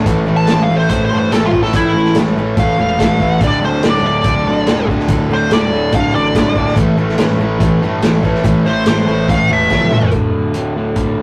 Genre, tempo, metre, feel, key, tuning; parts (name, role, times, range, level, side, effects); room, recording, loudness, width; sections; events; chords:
classic rock; 143 BPM; 4/4; straight; A4 = 440 Hz
picked steel-string acoustic guitar; accompaniment; 0.0-10.1 s; A2 to A4; -27 LUFS; equal
crunchy overdriven guitar; riff; 0.0-11.2 s; D2 to A3; -21 LUFS; equal
overdriven semi-hollow guitar; riff; 0.0-10.1 s; D2 to A3; -21 LUFS; equal
fuzz picked electric bass; bass; 0.0-11.2 s; D1 to G2; -24 LUFS; equal; overdrive
vintage drum kit; drums; 0.1-11.1 s; hi-hat, kick drum, snare drum, toms; -19 LUFS; equal
fuzz lead guitar; melody; 0.4-10.1 s; E4 to A5; -19 LUFS; equal; wah, distortion
moderate booth ambience, RT60 0.2 s; rough rehearsal-room recording, warm saturation; -14 LUFS; mono
0.0-10.1 A section; 10.1-11.2 B section
lead electric guitar solo 0.0-10.1; drum fill 9.7-10.1
0.1 A; 3.4 D; 6.8 A; 10.1 D5